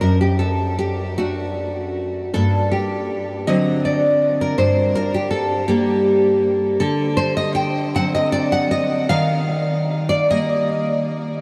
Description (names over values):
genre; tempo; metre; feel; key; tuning
romantic piece for solo classical guitar; 53 BPM (dotted quarters); 6/8; uneven beats, rubato; unclear; A4 = 438 Hz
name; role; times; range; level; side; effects
nylon-string guitar; solo; 0.0-11.4 s; F#2 to G5; -19 LUFS; equal; lush chorus, analog delay
room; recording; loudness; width
wet huge ambient reverb, RT60 7.5 s; dreamy mix soaked in reverb; -19 LUFS; mono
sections
0.0-11.4 A section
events
none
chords
0.0 D/F#; 2.3 Gm; 3.5 D7; 4.6 Gm; 6.8 D7; 9.1 Eb